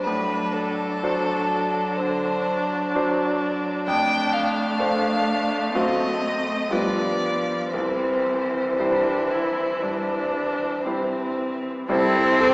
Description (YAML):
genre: classical, slow romantic movement for piano quartet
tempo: 56-65 BPM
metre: 4/4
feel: rubato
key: C major from 3.9 s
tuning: A4 = 439 Hz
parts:
  - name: clear violin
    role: melody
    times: 0.0-12.5 s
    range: G4 to G5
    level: -25 LUFS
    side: equal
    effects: none
  - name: rich cello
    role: second line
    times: 0.0-12.5 s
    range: E3 to C4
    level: -27 LUFS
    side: equal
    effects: none
  - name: bright grand piano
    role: accompaniment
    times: 0.0-12.5 s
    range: C2 to C5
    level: -26 LUFS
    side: equal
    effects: none
  - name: rich viola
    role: accompaniment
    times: 0.0-12.5 s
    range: B3 to A4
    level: -27 LUFS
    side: equal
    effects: none
room: wet concert hall reverb, RT60 2.0 s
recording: heard from further back in the room, small speaker sound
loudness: -20 LUFS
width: side -27 dB against mid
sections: 0.0-11.9 A section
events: none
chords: 0.1 D7/A; 3.9 Dm7/F; 5.8 F#dim7; 6.7 G7; 7.7 C